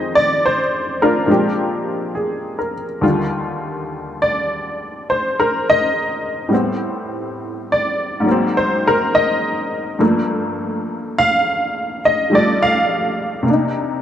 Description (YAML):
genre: solo jazz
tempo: 69 BPM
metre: 4/4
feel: swing 66% on 8ths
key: unclear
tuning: A4 = 440 Hz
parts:
  - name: honky-tonk upright piano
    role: solo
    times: 0.0-14.0 s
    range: Eb2 to F5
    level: -16 LUFS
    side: equal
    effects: none
room: moderate studio reverb, RT60 0.8 s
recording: none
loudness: -16 LUFS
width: side -10 dB against mid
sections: 0.0-3.0 A section; 3.0-14.0 B section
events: honky-tonk piano solo 3.0-14.0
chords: 0.0 Fm7; 1.3 Bb13; 3.0 Ebmaj9; 6.5 Am9; 8.3 Ab9; 10.0 Gm9; 13.5 Cm9